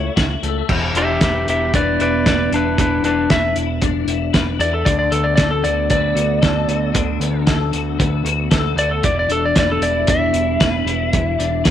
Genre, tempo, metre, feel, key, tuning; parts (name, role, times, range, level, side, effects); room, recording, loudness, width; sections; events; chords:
indie rock; 115 BPM; 4/4; straight; A4 = 440 Hz
lightly driven lead guitar; melody; 0.0-11.6 s; D4 to E5; -19 LUFS; left 1 dB; slapback echo
electric guitar through a small old amp; riff; 0.0-11.7 s; E2 to F#4; -27 LUFS; right 15 dB; wide subtle chorus, slapback echo
twelve-string electric guitar; riff; 0.0-11.7 s; D3 to B4; -23 LUFS; left 12 dB; ensemble chorus
overdriven picked electric bass; bass; 0.0-11.7 s; E1 to E2; -22 LUFS; right 1 dB
cloth-damped thuddy drum kit; drums; 0.2-11.7 s; crash cymbal, hi-hat, kick drum, snare drum; -19 LUFS; right 1 dB
small room ambience; 1960s-style stereo with parts hard left and right; -15 LUFS; side -10 dB against mid
0.7-11.7 A section
lead electric guitar solo 0.7-11.7
0.0 F#m7/C#; 0.7 Em7; 4.9 Bm7/D; 9.0 Em7